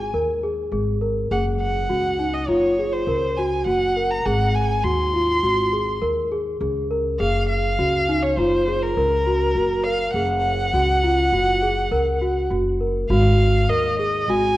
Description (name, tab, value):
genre	contemporary instrumental, chamber music in an uneven meter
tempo	102 BPM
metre	5/4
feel	straight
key	Gb lydian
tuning	A4 = 439 Hz
part	rich violin	melody	0.0-14.6 s	Bb4 to C6	-23 LUFS	equal	none
part	large celesta	arpeggios	0.0-14.5 s	Eb4 to Bb4	-22 LUFS	equal	none
part	upright bass	bass	0.0-14.6 s	Gb1 to Eb2	-24 LUFS	equal	none
room	moderate concert hall reverb, RT60 1.8 s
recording	worn, warbling old tape, cassette tape, warbly pitch drift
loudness	-18 LUFS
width	side -15 dB against mid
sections	0.0-13.1 A section; 13.1-14.6 B section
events	none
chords	0.0 Ab5; 1.3 Gb; 4.3 Ab; 7.2 Gbmaj7; 10.2 Gb; 13.1 Ab5